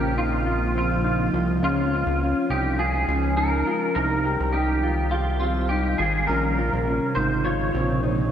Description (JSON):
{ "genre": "dream pop", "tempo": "103 BPM", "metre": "4/4", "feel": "straight", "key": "Bb dorian", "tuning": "A4 = 439 Hz", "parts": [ { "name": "clean electric guitar", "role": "melody", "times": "0.0-8.3 s", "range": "F4 to Db5", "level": "-25 LUFS", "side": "equal", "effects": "ensemble chorus, tape echo" }, { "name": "ethereal airy pad", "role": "sustained chords", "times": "0.0-8.3 s", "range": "C3 to F4", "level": "-28 LUFS", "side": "right 1 dB", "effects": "ensemble chorus, built-in reverb, phaser" }, { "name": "mellow electric guitar", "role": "arpeggios", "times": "0.0-8.3 s", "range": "C4 to G4", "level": "-27 LUFS", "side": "left 1 dB", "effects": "lush chorus, tape echo" }, { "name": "fat analog bass", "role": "bass", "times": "0.0-8.3 s", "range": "Ab1 to Db2", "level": "-25 LUFS", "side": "equal", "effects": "none" } ], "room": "wet lush hall reverb, RT60 2.8 s", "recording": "dreamy mix soaked in reverb", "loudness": "-20 LUFS", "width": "side -9 dB against mid", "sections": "0.0-8.3 A section", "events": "none", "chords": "0.0 Bbmadd9; 1.6 Db; 4.0 Cm; 6.3 Bbmadd9" }